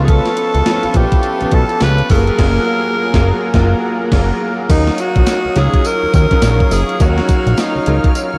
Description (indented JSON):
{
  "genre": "R&B, new jack swing",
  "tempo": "104 BPM",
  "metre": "4/4",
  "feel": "swing 61% on 16ths",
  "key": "Eb minor",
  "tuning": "A4 = 439 Hz",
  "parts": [
    { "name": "raspy tenor saxophone", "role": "melody", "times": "0.0-8.2 s", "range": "Eb4 to Cb5", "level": "-20 LUFS", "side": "equal", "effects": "analog delay" },
    { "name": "clear concert grand piano", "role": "accompaniment", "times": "0.0-8.4 s", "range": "F3 to F5", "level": "-22 LUFS", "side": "equal", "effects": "ensemble chorus" },
    { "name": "brassy analog pad", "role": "sustained chords", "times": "0.0-8.4 s", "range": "Ab4 to F6", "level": "-27 LUFS", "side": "equal", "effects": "chorus" },
    { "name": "fat analog bass", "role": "bass", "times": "0.0-8.4 s", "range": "Gb1 to Eb2", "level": "-17 LUFS", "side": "equal", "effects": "none" },
    { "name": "gated 80s digital drum machine", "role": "drums", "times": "0.1-8.3 s", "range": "crash cymbal, hi-hat, kick drum, snare drum, tambourine", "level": "-18 LUFS", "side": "equal", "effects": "gated reverb, gated reverb snare" }
  ],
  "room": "moderate huge ambient reverb, RT60 7.6 s",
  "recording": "dreamy mix soaked in reverb",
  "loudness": "-14 LUFS",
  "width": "mono",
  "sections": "0.0-4.7 A section; 4.7-8.4 B section",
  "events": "band accent 2.4-4.7",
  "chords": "0.0 Db7alt; 2.1 Gbmaj9; 4.7 Ebm9"
}